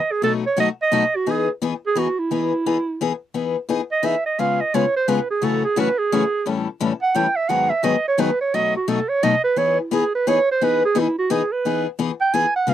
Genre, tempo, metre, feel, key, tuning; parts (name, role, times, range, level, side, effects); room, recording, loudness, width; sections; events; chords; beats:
jazz; 173 BPM; 3/4; swing 62% on 8ths; E major; A4 = 441 Hz
warm clarinet; melody; 0.0-12.7 s; E4 to G#5; -19 LUFS; right 4 dB
picked steel-string acoustic guitar; accompaniment; 0.2-12.7 s; F#2 to A4; -21 LUFS; left 6 dB
light reverb; dry, close 1970s-style studio recording; -18 LUFS; side -11 dB against mid
0.0-3.3 A section; 3.3-11.6 B section; 11.6-12.7 B section
clarinet solo 3.3-12.7
0.2 B7; 1.3 Emaj7; 4.4 C#7; 5.4 F#m7; 6.5 A7; 7.5 G#m7; 8.5 B7; 9.6 Emaj7
| 0.22 0.57 0.91 | 1.26 1.61 1.95 | 2.30 2.65 2.99 | 3.34 3.68 4.03 | 4.38 4.72 5.07 | 5.42 5.76 6.11 | 6.45 6.80 7.14 | 7.49 7.84 8.18 | 8.53 8.88 9.22 | 9.57 9.91 10.26 | 10.61 10.95 11.30 | 11.64 11.99 12.34 | 12.68